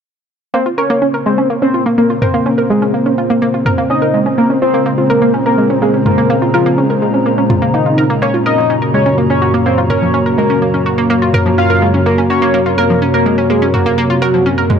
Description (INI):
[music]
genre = melodic techno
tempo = 125 BPM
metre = 4/4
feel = straight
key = Bb minor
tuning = A4 = 441 Hz
[part]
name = fat analog lead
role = melody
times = 0.5-14.4 s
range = Eb4 to F5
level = -16 LUFS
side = left 1 dB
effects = wide subtle chorus, dub echo
[part]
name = lush unison pad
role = sustained chords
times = 1.0-14.8 s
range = Gb2 to C4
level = -16 LUFS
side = left 1 dB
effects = chorus
[part]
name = analog pluck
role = arpeggios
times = 0.5-14.8 s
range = F3 to Bb4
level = -16 LUFS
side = right 2 dB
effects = chorus, vintage 12-bit sampler grit, dub echo
[part]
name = bowed-like drone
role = drone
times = 1.7-14.8 s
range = Bb2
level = -23 LUFS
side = right 1 dB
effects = built-in reverb
[part]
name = warbly tape-like pad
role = texture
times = 1.8-14.8 s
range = Gb4 to Bb5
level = -20 LUFS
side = equal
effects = chorus, built-in reverb
[part]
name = electronic toms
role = drums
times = 2.2-14.8 s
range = none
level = -16 LUFS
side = right 1 dB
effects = low-pass filter on toms
[sound]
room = light reverb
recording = dark, warm production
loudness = -10 LUFS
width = side -7 dB against mid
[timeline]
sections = 0.5-14.8 A section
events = filter sweep on synth arpeggio sound 0.5-14.8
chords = 0.5 Bbmadd9; 8.2 Gb